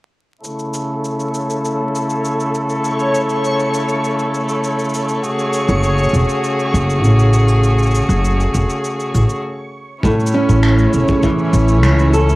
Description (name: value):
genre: folktronica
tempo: 100 BPM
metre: 4/4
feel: straight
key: unclear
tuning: A4 = 440 Hz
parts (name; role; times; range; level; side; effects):
- rich string quartet; sustained chords; 0.4-12.4 s; C#3 to C#5; -18 LUFS; equal; low-pass filter, cassette tape
- electronic cabasa and finger snaps; drums; 0.4-12.4 s; none; -29 LUFS; equal; overdrive, cassette tape
- backwards swelling texture; texture; 1.4-12.4 s; G#4 to C#6; -25 LUFS; equal; built-in reverb, cassette tape, plate reverb
- upright bass; bass; 5.7-12.4 s; E1 to C#2; -13 LUFS; equal; none
- fingerpicked steel-string acoustic guitar; arpeggios; 10.0-12.4 s; A2 to A4; -15 LUFS; right 1 dB; cassette tape, tape echo
- kick drum; drums; 10.0-11.4 s; none; -20 LUFS; equal; cassette tape
room: light reverb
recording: home recording on cassette, vinyl crackle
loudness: -13 LUFS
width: side -19 dB against mid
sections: 0.4-10.0 A section; 10.0-12.4 B section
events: filter sweep on string quartet 0.4-10.0; stop 9.4-10.0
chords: 0.4 A; 5.2 F#madd9; 10.0 A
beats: | 0.44 1.04 1.64 2.24 | 2.84 3.44 4.04 4.64 | 5.24 5.84 6.44 7.04 | 7.64 8.24 8.84 9.44 | 10.04 10.64 11.24 11.84